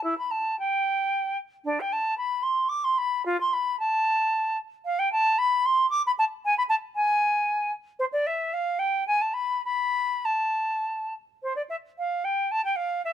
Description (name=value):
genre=classical, baroque-style fantasia for unaccompanied flute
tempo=100-116 BPM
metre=3/4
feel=rubato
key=A minor from 4.9 s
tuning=A4 = 440 Hz
part: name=silver concert flute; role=solo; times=0.0-13.1 s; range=D4 to D6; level=-23 LUFS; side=equal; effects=none
room=little or no reverb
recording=close, detailed microphones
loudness=-24 LUFS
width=side -10 dB against mid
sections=0.0-11.4 A section; 11.4-13.1 B section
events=none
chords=none